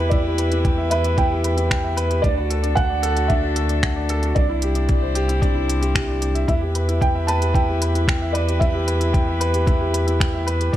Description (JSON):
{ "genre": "piano and strings electronica", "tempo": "113 BPM", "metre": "4/4", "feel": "straight", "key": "E minor", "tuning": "A4 = 441 Hz", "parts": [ { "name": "felt-muted upright piano", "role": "melody", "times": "0.0-9.6 s", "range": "D5 to A5", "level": "-26 LUFS", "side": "right 3 dB", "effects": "none" }, { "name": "warm string quartet", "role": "sustained chords", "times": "0.0-10.8 s", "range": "C3 to B4", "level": "-30 LUFS", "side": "equal", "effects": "sidechain pumping" }, { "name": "warm concert grand piano", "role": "riff", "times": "0.0-10.8 s", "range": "D4 to G5", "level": "-23 LUFS", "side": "left 1 dB", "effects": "digital delay" }, { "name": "round analog bass", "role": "bass", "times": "0.0-10.8 s", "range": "C2 to E2", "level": "-22 LUFS", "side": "equal", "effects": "tube saturation, sidechain pumping" }, { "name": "electronic kick drum", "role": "drums", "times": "0.1-10.8 s", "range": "none", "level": "-20 LUFS", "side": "equal", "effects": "none" }, { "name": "organic electronic drum kit", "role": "drums", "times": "0.1-10.8 s", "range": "finger snaps, hi-hat", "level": "-27 LUFS", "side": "right 1 dB", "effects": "none" } ], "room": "studio reverb", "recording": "none", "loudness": "-18 LUFS", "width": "side -12 dB against mid", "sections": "0.0-10.8 A section", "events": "none", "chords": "0.0 Em; 2.2 D; 4.4 Cadd9; 6.5 Em" }